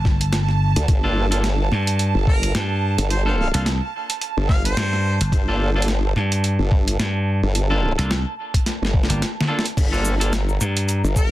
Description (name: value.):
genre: glitch hop.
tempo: 108 BPM.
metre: 4/4.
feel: swing 57% on 16ths.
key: G minor.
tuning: A4 = 438 Hz.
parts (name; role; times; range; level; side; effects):
slap bass; bass; 0.0-11.0 s; G1 to G2; -20 LUFS; equal; none.
airy breathy pad; texture; 0.0-11.3 s; A5 to Bb5; -30 LUFS; right 8 dB; chorus, sidechain pumping.
boom bap sampler-style drum kit; drums; 0.1-11.3 s; crash cymbal, hi-hat, shaker, snare drum; -25 LUFS; equal; overdrive.
electronic kick drum; drums; 0.1-11.3 s; none; -18 LUFS; equal; none.
formant-sweep wobble bass; bass; 0.8-11.3 s; G1 to D2; -20 LUFS; equal; chorus, tube saturation.
clean electric guitar; stabs; 1.0-10.3 s; Bb3 to A4; -27 LUFS; equal; sidechain pumping, ping-pong delay.
warm harmonica; melody; 2.3-5.2, 11.2-11.3 s; Bb4 to F5; -29 LUFS; left 1 dB; ping-pong delay.
room: little or no reverb.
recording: dense, heavily limited modern master.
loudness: -18 LUFS.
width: side -15 dB against mid.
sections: 0.0-11.3 A section.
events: drum fill 8.7-9.8; break 9.2-9.8.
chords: 0.0 Gm9.